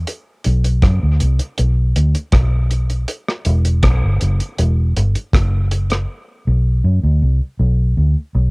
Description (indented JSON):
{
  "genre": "dub reggae",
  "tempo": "80 BPM",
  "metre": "4/4",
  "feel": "straight",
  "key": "E minor",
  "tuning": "A4 = 442 Hz",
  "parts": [
    { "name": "vintage muted fingered electric bass", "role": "bass", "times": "0.0-8.5 s", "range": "E1 to F#2", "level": "-14 LUFS", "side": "equal", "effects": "none" },
    { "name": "deep reggae drum kit", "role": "drums", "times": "0.1-6.1 s", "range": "hi-hat, kick drum, rim click", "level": "-18 LUFS", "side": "equal", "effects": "cassette tape" }
  ],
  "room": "little or no reverb",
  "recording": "home recording on cassette",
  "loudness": "-14 LUFS",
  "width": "side -35 dB against mid",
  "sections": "0.0-8.5 A section",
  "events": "part muted 6.1-8.5",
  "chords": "none"
}